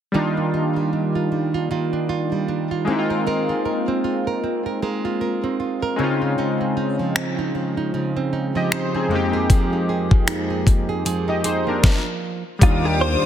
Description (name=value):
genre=contemporary R&B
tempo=77 BPM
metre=4/4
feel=swing 58% on 16ths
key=Eb major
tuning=A4 = 445 Hz
part: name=warm analog keys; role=accompaniment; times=0.1-13.3 s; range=F2 to Eb5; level=-23 LUFS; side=left 2 dB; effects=chorus
part: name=nylon-string guitar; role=arpeggios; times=0.1-13.3 s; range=Db3 to Bb4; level=-24 LUFS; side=right 5 dB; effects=none
part: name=smooth R&B drum kit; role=drums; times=7.2-12.8 s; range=finger snaps, hi-hat, kick drum, snare drum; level=-17 LUFS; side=left 1 dB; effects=soft clipping on snare
part: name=direct-recorded clean electric guitar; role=melody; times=12.6-13.3 s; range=F4 to C5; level=-21 LUFS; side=left 1 dB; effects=analog chorus
part: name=warm studio string section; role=sustained chords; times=12.6-13.3 s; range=G4 to Eb6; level=-28 LUFS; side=left 3 dB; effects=none
part: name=fat analog bass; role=bass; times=12.6-13.2 s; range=Eb2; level=-21 LUFS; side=left 1 dB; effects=none
room=light reverb, digital ambience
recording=dense, heavily limited modern master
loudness=-19 LUFS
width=side -10 dB against mid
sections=0.1-12.6 A section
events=none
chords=0.1 Ebmaj9; 2.9 Ab69; 6.0 Dbmaj9; 9.1 Fm11; 12.6 Ebmaj9